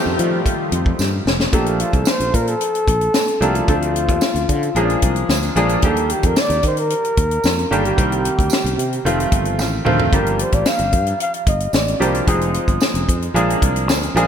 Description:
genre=polished 1980s jazz-funk pop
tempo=112 BPM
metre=4/4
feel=straight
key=Bb major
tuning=A4 = 436 Hz
part: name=bright baby grand piano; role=accompaniment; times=0.0-14.3 s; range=Eb3 to A4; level=-21 LUFS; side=equal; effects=lush chorus
part: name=lush unison pad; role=sustained chords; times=0.0-1.5 s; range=Eb3 to F4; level=-26 LUFS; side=left 2 dB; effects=chorus, phaser
part: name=sustaining fretless electric bass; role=bass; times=0.1-14.3 s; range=F1 to F3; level=-21 LUFS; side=equal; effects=none
part: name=tight funk drum kit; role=drums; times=0.2-14.3 s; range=hi-hat, kick drum, snare drum, toms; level=-20 LUFS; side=left 1 dB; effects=gated reverb
part: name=tambourine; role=percussion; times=1.0-14.0 s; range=none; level=-32 LUFS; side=right 9 dB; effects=none
part: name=breathy flugelhorn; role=melody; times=1.5-13.1 s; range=F4 to F5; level=-22 LUFS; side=equal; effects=none
room=moderate lush hall reverb, RT60 1.8 s, small room ambience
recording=bright 1980s-style digital production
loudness=-15 LUFS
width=side -8 dB against mid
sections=0.0-1.5 A section; 1.5-14.3 B section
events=drum fill 1.0-1.5, 9.6-10.1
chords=0.0 F9; 1.5 Bbmaj7; 3.7 Dm7; 4.8 Bb7; 5.8 Ebmaj7; 8.0 Cm7; 9.1 F7; 10.1 Gm7; 12.3 Fm7; 13.3 Bb7

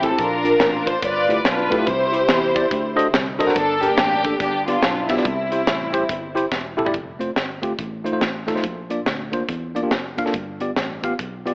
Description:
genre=uptempo gospel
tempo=142 BPM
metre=4/4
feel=swing 63% on 8ths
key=F major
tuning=A4 = 442 Hz
part: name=warm studio string section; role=melody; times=0.0-6.5 s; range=G3 to D5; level=-19 LUFS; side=equal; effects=none
part: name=bell-like tine electric piano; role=accompaniment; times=0.0-11.5 s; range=G2 to F#5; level=-23 LUFS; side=equal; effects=fast stereo tremolo
part: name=fingered electric bass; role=bass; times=0.0-11.5 s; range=E1 to E2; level=-32 LUFS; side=equal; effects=none
part: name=crisp fusion drum kit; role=drums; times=0.0-11.5 s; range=hi-hat, kick drum, snare drum, toms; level=-23 LUFS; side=equal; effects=none
room=moderate lush hall reverb, RT60 2.0 s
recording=worn, warbling old tape, cassette tape, warbly pitch drift, AM radio sound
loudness=-18 LUFS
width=side -28 dB against mid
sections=0.0-6.9 A section; 6.9-11.5 B section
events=drum fill 6.5-6.9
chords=0.2 Bb; 1.0 G13; 1.9 C; 2.7 D7b9; 3.6 Gm; 4.4 G7; 5.2 C; 6.9 F; 7.8 F7/A; 8.6 Bb; 10.3 G7

